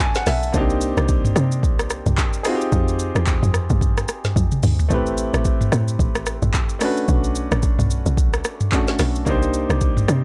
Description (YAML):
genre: amapiano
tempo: 110 BPM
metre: 4/4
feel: swing 58% on 16ths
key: unclear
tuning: A4 = 440 Hz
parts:
  - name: clear concert grand piano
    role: accompaniment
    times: 0.0-10.2 s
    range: A3 to A5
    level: -27 LUFS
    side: equal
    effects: none
  - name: afro-pop drum kit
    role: drums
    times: 0.0-10.2 s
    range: handclaps, hi-hat, kick drum, rim click, shaker, snare drum, toms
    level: -23 LUFS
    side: equal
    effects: vintage 12-bit sampler grit
  - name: woody log drum bass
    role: bass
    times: 0.3-10.2 s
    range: A1 to C3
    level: -24 LUFS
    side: equal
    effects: none
room: little or no reverb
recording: dry, gritty hardware recording, transformer saturation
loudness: -20 LUFS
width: mono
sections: 0.0-10.2 A section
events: grand piano fill 0.0-0.5; drum fill 4.4-4.9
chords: 0.0 Bm7; 0.5 Cm7; 2.4 Fm7; 4.9 Am7; 6.8 Bm7; 9.3 Cm7